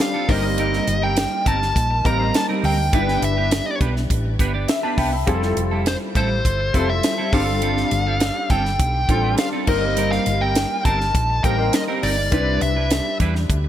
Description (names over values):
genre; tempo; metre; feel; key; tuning
polished 1980s jazz-funk pop; 102 BPM; 4/4; straight; unclear; A4 = 440 Hz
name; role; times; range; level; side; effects
nasal lead guitar with a parked wah; melody; 0.0-13.2 s; C5 to Bb5; -23 LUFS; equal; overdrive
warm grand piano; accompaniment; 0.0-13.7 s; G3 to B5; -24 LUFS; left 2 dB; ensemble chorus
clean electric guitar; riff; 0.0-13.7 s; G3 to D5; -27 LUFS; right 4 dB; analog chorus
tight funk drum kit; drums; 0.0-13.6 s; crash cymbal, hi-hat, kick drum, snare drum; -22 LUFS; equal; gated reverb
hollow-body short-scale fingered electric bass; bass; 0.3-13.7 s; F1 to E2; -23 LUFS; equal; none
room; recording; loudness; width
small room ambience; none; -17 LUFS; side -11 dB against mid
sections
0.0-13.7 A section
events
grand piano fill 4.4-5.3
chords
0.3 Eb6/G; 2.9 Em7/G; 5.3 Fmaj9; 7.3 G9sus4; 9.7 Eb6/G; 12.3 Cmaj9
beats
0.00 | 0.58 1.17 1.76 2.34 | 2.93 3.52 4.10 4.69 | 5.28 5.86 6.45 7.04 | 7.62 8.21 8.80 9.38 | 9.97 10.56 11.15 11.73 | 12.32 12.91 13.49